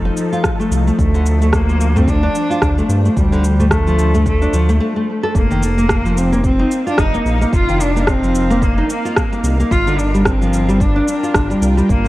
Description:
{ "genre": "organic downtempo", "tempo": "110 BPM", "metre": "4/4", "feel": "swing 58% on 16ths", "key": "F mixolydian", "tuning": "A4 = 440 Hz", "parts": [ { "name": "bowed-like drone", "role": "sustained chords", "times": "0.0-12.1 s", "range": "F3 to G5", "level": "-26 LUFS", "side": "left 1 dB", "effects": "built-in reverb, sidechain pumping" }, { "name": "round analog bass", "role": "bass", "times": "0.0-12.1 s", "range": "F1 to G2", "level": "-16 LUFS", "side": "equal", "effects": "none" }, { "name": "nylon-string guitar", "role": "arpeggios", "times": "0.1-12.1 s", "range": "D3 to A4", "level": "-19 LUFS", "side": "equal", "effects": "tape echo" }, { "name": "electronic cabasa and rim click", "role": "drums", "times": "0.2-12.1 s", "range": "none", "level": "-22 LUFS", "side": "equal", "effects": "overdrive, small room ambience" }, { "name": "electronic kick drum", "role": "drums", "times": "0.4-12.0 s", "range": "none", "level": "-19 LUFS", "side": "equal", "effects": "small room ambience" }, { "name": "rich cello", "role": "melody", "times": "1.0-12.1 s", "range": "G3 to F4", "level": "-19 LUFS", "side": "equal", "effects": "digital delay" }, { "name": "udu", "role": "percussion", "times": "2.0-4.2 s", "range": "none", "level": "-22 LUFS", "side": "right 1 dB", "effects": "none" } ], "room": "light reverb, studio ambience", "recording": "worn, warbling old tape, cassette tape, warbly pitch drift", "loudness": "-13 LUFS", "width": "side -17 dB against mid", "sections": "0.0-5.3 A section; 5.3-12.1 B section", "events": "break 4.8-5.3", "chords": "0.0 F7; 1.0 Dm7; 5.3 F7sus4; 9.7 Gm7" }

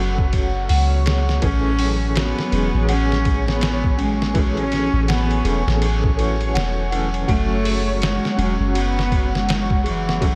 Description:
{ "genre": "trip hop", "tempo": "82 BPM", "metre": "4/4", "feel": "swing 60% on 16ths", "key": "unclear", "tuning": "A4 = 442 Hz", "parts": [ { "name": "felt-muted upright piano", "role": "accompaniment", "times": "0.0-10.3 s", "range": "E3 to A4", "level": "-30 LUFS", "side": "equal", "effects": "tremolo, tape echo" }, { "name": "dark analog pad", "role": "sustained chords", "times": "0.0-10.3 s", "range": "F#3 to C#6", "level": "-31 LUFS", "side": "equal", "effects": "chorus, phaser, vintage 12-bit sampler grit" }, { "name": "celesta", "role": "arpeggios", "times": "0.0-10.3 s", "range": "C#4 to F#5", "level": "-32 LUFS", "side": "equal", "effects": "vintage 12-bit sampler grit, digital delay" }, { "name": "soft 808-style bass", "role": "bass", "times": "0.0-10.3 s", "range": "E1 to C#2", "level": "-24 LUFS", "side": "equal", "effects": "none" }, { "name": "backwards swelling texture", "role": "texture", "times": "0.0-10.3 s", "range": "C#5", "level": "-36 LUFS", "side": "equal", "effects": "built-in reverb" }, { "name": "trip hop sampler-style drum kit", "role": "drums", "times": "0.2-10.3 s", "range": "hi-hat, kick drum, ride cymbal, snare drum", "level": "-25 LUFS", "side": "equal", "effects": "small room ambience" }, { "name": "clear cello", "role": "melody", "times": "1.4-10.3 s", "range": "E3 to C#4", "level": "-27 LUFS", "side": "equal", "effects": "tape echo" } ], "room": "little or no reverb", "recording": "none", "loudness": "-19 LUFS", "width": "mono", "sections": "0.0-10.3 A section", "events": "none", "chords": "0.0 Amaj7" }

